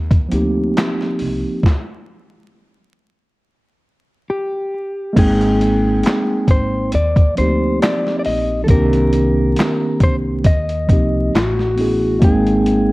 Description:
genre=lo-fi hip hop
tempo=68 BPM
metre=4/4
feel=swing 55% on 16ths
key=Eb major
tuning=A4 = 440 Hz
part: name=upright bass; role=bass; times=0.0-12.9 s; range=Ab1 to Eb2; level=-20 LUFS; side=equal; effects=none
part: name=boom bap sampler-style drum kit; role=drums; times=0.1-12.9 s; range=crash cymbal, handclaps, hi-hat, kick drum, snare drum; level=-16 LUFS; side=equal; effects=none
part: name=mellow tine electric piano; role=accompaniment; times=0.3-12.9 s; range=Eb3 to G5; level=-18 LUFS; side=right 1 dB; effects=medium stereo tremolo, cassette tape
part: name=clean electric guitar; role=melody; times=4.3-12.9 s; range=Gb4 to Eb5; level=-21 LUFS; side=left 2 dB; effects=none
room=light reverb, digital ambience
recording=worn, warbling old tape, cassette tape, vinyl crackle, warbly pitch drift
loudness=-14 LUFS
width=side -21 dB against mid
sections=0.0-5.2 A section; 5.2-12.9 B section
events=stop 1.6-5.2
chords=0.0 Eb6; 1.6 N.C.; 5.2 Abmaj7; 6.9 Eb6; 8.7 Cm9; 10.5 Eb6; 11.3 Amaj7; 12.2 Abmaj7

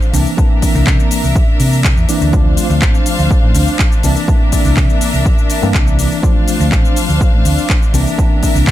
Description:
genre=filtered disco house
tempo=123 BPM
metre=4/4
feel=straight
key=unclear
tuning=A4 = 440 Hz
part: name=tine electric piano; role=accompaniment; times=0.0-8.7 s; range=E3 to D4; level=-19 LUFS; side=equal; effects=overdrive, fast stereo tremolo, phaser, vintage 12-bit sampler grit, sidechain pumping
part: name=clear studio string section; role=sustained chords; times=0.0-8.7 s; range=D4 to F5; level=-21 LUFS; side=left 1 dB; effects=sidechain pumping
part: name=house drum kit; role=drums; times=0.0-8.7 s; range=handclaps, hi-hat, shaker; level=-21 LUFS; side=left 2 dB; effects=sidechain pumping on perc, sidechain pumping on hats, sidechain pumping on cymbals
part: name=hollow-body short-scale fingered electric bass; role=bass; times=0.1-8.7 s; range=A1 to C3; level=-15 LUFS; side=equal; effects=sidechain pumping
part: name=electronic kick drum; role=drums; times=0.4-8.7 s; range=none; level=-13 LUFS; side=equal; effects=none
room=little or no reverb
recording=none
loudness=-10 LUFS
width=side -14 dB against mid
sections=0.0-8.7 A section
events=none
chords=0.1 C9; 2.3 Dm7; 4.0 C9; 6.2 Dm7; 7.9 C9

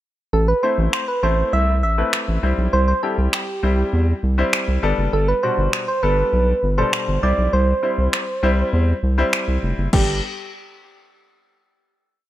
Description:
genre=dance-pop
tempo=100 BPM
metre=4/4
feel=straight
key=G major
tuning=A4 = 440 Hz
part: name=soft struck synth lead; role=melody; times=0.3-10.2 s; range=G4 to E5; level=-22 LUFS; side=right 2 dB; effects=chorus, ping-pong delay
part: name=round analog bass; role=bass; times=0.3-10.2 s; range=F1 to E2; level=-18 LUFS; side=equal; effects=sidechain pumping
part: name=clear grand piano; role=accompaniment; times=0.6-10.2 s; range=B2 to C5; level=-24 LUFS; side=left 3 dB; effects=sidechain pumping
part: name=punchy analog drum machine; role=drums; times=0.9-10.1 s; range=crash cymbal, finger snaps, kick drum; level=-22 LUFS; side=equal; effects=none
room=little or no reverb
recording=none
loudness=-17 LUFS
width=side -14 dB against mid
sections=0.3-9.9 verse; 9.9-12.3 final chord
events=none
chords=0.3 Am; 2.4 C; 4.8 Gadd9; 7.2 C; 9.9 Gadd9

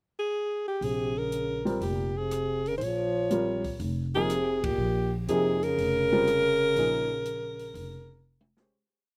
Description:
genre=modal jazz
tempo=121 BPM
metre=4/4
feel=swing 69% on 8ths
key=Bb dorian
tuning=A4 = 441 Hz
part: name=warm alto saxophone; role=melody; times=0.2-8.2 s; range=G4 to Db5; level=-30 LUFS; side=equal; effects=slapback echo
part: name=dark trombone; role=second line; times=0.8-8.2 s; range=Bb2 to F3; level=-35 LUFS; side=equal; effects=none
part: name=upright bass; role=bass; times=0.8-8.7 s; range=F1 to F2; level=-37 LUFS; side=equal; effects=none
part: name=open jazz drum kit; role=drums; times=0.8-8.7 s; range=hi-hat, kick drum, ride cymbal, rim click, snare drum, toms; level=-45 LUFS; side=equal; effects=none
part: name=warm upright piano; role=accompaniment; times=1.7-8.7 s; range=F3 to C5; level=-33 LUFS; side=equal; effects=slapback echo
room=little or no reverb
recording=recorded outdoors, with no room sound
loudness=-28 LUFS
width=mono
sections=0.0-0.8 pickup bar; 0.8-8.7 A section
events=band accent 4.5; fade-out 6.8-8.7; drum fill 8.2-8.7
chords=0.0 N.C.; 0.8 Bbm9

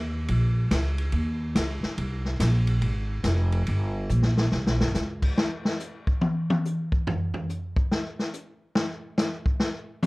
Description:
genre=jazz, big band swing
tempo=141 BPM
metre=4/4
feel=swing 66% on 8ths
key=F minor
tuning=A4 = 442 Hz
part: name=upright bass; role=bass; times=0.0-5.4 s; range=F1 to Eb2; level=-24 LUFS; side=equal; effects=none
part: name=swinging big-band drum kit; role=drums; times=0.3-10.1 s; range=crash cymbal, hi-hat, kick drum, ride cymbal, snare drum, toms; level=-26 LUFS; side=left 1 dB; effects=none
room=little or no reverb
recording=worn, warbling old tape, cassette tape, warbly pitch drift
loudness=-24 LUFS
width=side -23 dB against mid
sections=0.0-5.4 A section; 5.4-10.1 B section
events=drum fill 4.1-5.0; drum solo 5.4-10.1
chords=none

